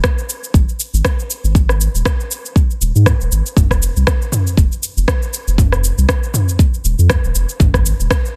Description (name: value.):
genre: afro house.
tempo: 119 BPM.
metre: 4/4.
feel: swing 56% on 16ths.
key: F minor.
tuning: A4 = 440 Hz.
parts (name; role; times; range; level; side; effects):
deep house drum kit; drums; 0.0-8.3 s; rim click, shaker, toms; -22 LUFS; equal; none.
electronic kick drum; drums; 0.0-8.2 s; none; -16 LUFS; equal; none.
warm sub bass; bass; 0.5-8.1 s; Eb1 to Ab2; -17 LUFS; equal; sidechain pumping.
room: digital ambience.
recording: dense, heavily limited modern master.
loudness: -15 LUFS.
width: mono.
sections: 0.0-8.4 A section.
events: none.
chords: none.